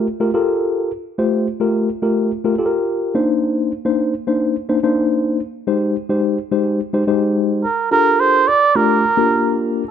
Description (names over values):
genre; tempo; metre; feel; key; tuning
funk; 107 BPM; 4/4; straight; G minor; A4 = 436 Hz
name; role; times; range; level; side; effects
mellow tine electric piano; accompaniment; 0.0-9.8 s; Ab3 to C5; -16 LUFS; left 2 dB; medium stereo tremolo
trumpet with cup mute; melody; 7.6-9.9 s; Bb4 to D5; -14 LUFS; right 5 dB; none
room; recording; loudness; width
moderate large studio reverb, RT60 1.2 s, studio ambience; dark, warm production; -15 LUFS; side -8 dB against mid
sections
0.0-7.9 A section; 7.9-9.9 B section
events
none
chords
0.0 Gm9; 3.1 Cm9; 5.7 Abmaj7; 7.9 Gm9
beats
0.06 0.62 | 1.19 1.75 2.31 2.87 | 3.43 3.99 4.55 5.11 | 5.67 6.23 6.79 7.35 | 7.91 8.47 9.04 9.60